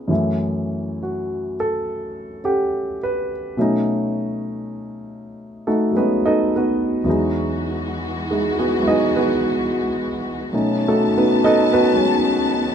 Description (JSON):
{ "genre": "jazz ballad", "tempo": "69 BPM", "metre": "4/4", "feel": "swing 69% on 8ths", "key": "E major", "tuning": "A4 = 440 Hz", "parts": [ { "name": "warm concert grand piano", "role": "accompaniment", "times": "0.0-12.7 s", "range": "E2 to F#5", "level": "-18 LUFS", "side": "equal", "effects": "none" }, { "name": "warm studio string section", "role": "sustained chords", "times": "7.0-12.7 s", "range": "D#3 to A5", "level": "-24 LUFS", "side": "left 3 dB", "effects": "none" } ], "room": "moderate studio reverb, RT60 0.5 s", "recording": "none", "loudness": "-18 LUFS", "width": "side -8 dB against mid", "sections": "0.0-12.7 A section", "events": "none", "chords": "0.1 F#m7; 3.6 B9; 7.1 Emaj9; 10.5 B9" }